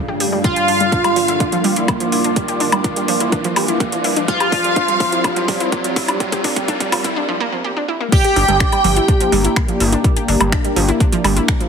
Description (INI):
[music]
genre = melodic techno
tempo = 125 BPM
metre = 4/4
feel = straight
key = G minor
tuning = A4 = 440 Hz
[part]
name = dark analog pad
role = sustained chords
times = 0.1-11.7 s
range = G2 to D5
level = -24 LUFS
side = equal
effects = chorus, sidechain pumping
[part]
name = analog pluck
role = arpeggios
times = 0.0-11.7 s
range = F3 to G4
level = -22 LUFS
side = right 1 dB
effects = chorus, sidechain pumping, digital delay
[part]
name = riser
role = sound effects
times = 0.0-7.2 s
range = none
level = -26 LUFS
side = equal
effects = none
[part]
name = warbly tape-like pad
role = texture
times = 0.0-11.7 s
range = G3 to D6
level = -26 LUFS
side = equal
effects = chorus, built-in reverb, sidechain pumping
[part]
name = house drum kit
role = drums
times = 0.2-11.7 s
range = crash cymbal, finger snaps, hi-hat, woodblock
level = -22 LUFS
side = equal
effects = high-pass filter on hats, high-pass filter on perc, high-pass filter on cymbals, high-pass filter on snare, high-pass filter on room
[part]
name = resonant sweep polysynth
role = melody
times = 0.4-9.5 s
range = F4 to G4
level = -20 LUFS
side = right 1 dB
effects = analog chorus, sidechain pumping, ping-pong delay
[part]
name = dark studio violin section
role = second line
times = 0.4-9.5 s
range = F5 to G5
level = -23 LUFS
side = equal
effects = sidechain pumping, digital delay
[part]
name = electronic kick drum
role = drums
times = 0.4-11.6 s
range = none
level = -18 LUFS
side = equal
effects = none
[part]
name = gritty driven synth bass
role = bass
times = 8.4-11.4 s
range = G1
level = -18 LUFS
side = equal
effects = sidechain pumping
[sound]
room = moderate recital hall reverb, RT60 1.7 s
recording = heavily compressed radio sound, high-pass filter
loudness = -14 LUFS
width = side -6 dB against mid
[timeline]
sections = 0.0-8.1 A section; 8.1-11.7 B section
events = build-up 0.0-8.1; riser 0.0-7.2; filter sweep on analog synth pad 0.0-8.1; drum fill 0.4-7.2; break 7.2-8.1; drop 8.1-11.7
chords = 0.4 Bb/G; 4.3 Csus4; 8.1 Gm